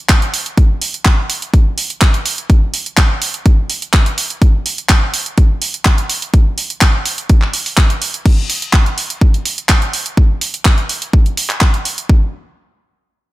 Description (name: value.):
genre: house.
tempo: 125 BPM.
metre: 4/4.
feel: straight.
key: none.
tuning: none.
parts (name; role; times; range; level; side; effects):
electronic kick drum; drums; 0.1-12.2 s; none; -10 LUFS; equal; none.
house drum kit; drums; 0.1-12.1 s; crash cymbal, handclaps, hi-hat; -16 LUFS; right 1 dB; sidechain pumping on hats, sidechain pumping on cymbals.
room: little or no reverb.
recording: none.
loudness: -12 LUFS.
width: side -17 dB against mid.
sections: 0.0-8.3 A section; 8.3-12.1 B section; 12.1-13.3 C section.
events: drop 0.0-8.3.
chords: none.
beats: 0.10 | 0.58 1.06 1.54 2.02 | 2.50 2.98 3.46 3.94 | 4.42 4.90 5.38 5.86 | 6.34 6.82 7.30 7.78 | 8.26 8.74 9.22 9.70 | 10.18 10.66 11.14 11.62 | 12.10.